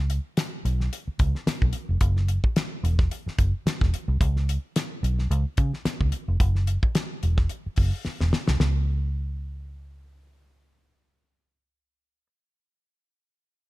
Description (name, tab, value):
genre	funk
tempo	109 BPM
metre	4/4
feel	swing 56% on 16ths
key	unclear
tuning	A4 = 440 Hz
part	vintage muted fingered electric bass	bass	0.0-12.3 s	E1 to C#3	-24 LUFS	equal	none
part	damped 70s drum kit	drums	0.1-8.7 s	hi-hat, kick drum, snare drum	-25 LUFS	equal	none
room	little or no reverb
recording	dark, warm production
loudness	-22 LUFS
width	side -19 dB against mid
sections	0.0-8.6 A section; 8.6-10.8 B section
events	drum fill 8.1-8.6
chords	none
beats	0.37 0.92 1.47 | 2.01 2.56 3.11 3.66 | 4.21 4.76 5.30 5.85 | 6.40 6.95 7.50 8.05 | 8.60 9.15 9.70 10.25